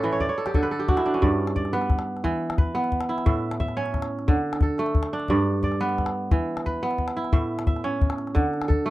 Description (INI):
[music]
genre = west african traditional, West African string and xylophone music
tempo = 118 BPM (dotted quarters)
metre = 12/8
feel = straight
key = G lydian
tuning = A4 = 441 Hz
[part]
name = kora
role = arpeggios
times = 0.0-8.9 s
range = G2 to G5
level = -24 LUFS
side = right 2 dB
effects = none
[part]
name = calabash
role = percussion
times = 0.0-8.9 s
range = none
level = -24 LUFS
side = left 2 dB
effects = none
[sound]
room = little or no reverb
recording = dry, close 1970s-style studio recording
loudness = -22 LUFS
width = side -16 dB against mid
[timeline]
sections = 0.0-1.2 A section; 1.2-8.9 B section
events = kora fill 0.0-1.2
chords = 0.2 N.C.; 1.2 G; 2.2 E5; 3.3 A; 4.3 D5; 5.3 G; 6.3 E5; 7.3 A; 8.4 D5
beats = 0.20 0.71 | 1.22 1.73 2.24 2.75 | 3.26 3.77 4.28 4.79 | 5.30 5.80 6.31 6.82 | 7.33 7.84 8.35 8.86